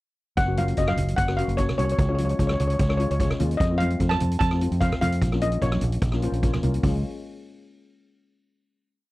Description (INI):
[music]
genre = calypso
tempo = 149 BPM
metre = 4/4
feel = straight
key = Db major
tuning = A4 = 440 Hz
[part]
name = steel pan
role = melody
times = 0.4-6.4 s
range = Db5 to A5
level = -27 LUFS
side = equal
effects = none
[part]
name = fingered electric bass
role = bass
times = 0.4-7.0 s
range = Gb1 to F2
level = -24 LUFS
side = equal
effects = none
[part]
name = street-band drum kit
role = drums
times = 0.4-6.9 s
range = hi-hat, kick drum, rim click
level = -27 LUFS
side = equal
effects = none
[part]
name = steel pan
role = accompaniment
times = 0.5-7.0 s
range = Ab3 to F5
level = -30 LUFS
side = left 4 dB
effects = none
[part]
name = congas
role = percussion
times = 0.6-7.0 s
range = none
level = -31 LUFS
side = right 3 dB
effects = none
[sound]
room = little or no reverb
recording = dry, close 1970s-style studio recording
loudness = -21 LUFS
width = side -18 dB against mid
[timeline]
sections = 0.4-6.8 verse; 6.8-8.5 final chord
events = steel pan fill 6.0-6.8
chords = 0.4 Gb; 2.0 Db; 3.6 F; 5.2 Bbm; 6.8 Db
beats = | 0.38 0.78 1.18 1.58 | 1.99 2.39 2.79 3.20 | 3.60 4.00 4.41 4.81 | 5.21 5.62 6.02 6.43 | 6.83